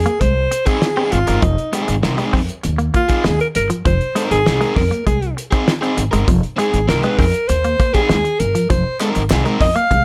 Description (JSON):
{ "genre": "funk", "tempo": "99 BPM", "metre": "4/4", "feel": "straight", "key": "F minor", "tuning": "A4 = 440 Hz", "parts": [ { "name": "breathy alto saxophone", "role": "melody", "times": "0.0-10.0 s", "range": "Eb4 to F5", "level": "-20 LUFS", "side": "equal", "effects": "none" }, { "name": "upright bass", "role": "bass", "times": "0.0-10.0 s", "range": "F1 to F2", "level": "-22 LUFS", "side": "equal", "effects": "none" }, { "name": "semi-hollow electric guitar", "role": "riff", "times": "0.1-10.0 s", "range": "F3 to C4", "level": "-25 LUFS", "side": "equal", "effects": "tremolo" }, { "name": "cloth-damped thuddy drum kit", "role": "drums", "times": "0.1-10.0 s", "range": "hi-hat, kick drum, snare drum", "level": "-22 LUFS", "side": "equal", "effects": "none" }, { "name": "crunchy overdriven guitar", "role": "accompaniment", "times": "0.7-9.7 s", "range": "C4 to Bb4", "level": "-24 LUFS", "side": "equal", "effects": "none" }, { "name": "group handclap", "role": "percussion", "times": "9.0-9.4 s", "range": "none", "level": "-31 LUFS", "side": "equal", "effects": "none" } ], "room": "light reverb", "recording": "none", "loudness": "-17 LUFS", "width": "mono", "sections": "0.0-10.0 A section", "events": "alto saxophone solo 0.0-10.0", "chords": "0.0 Fm7" }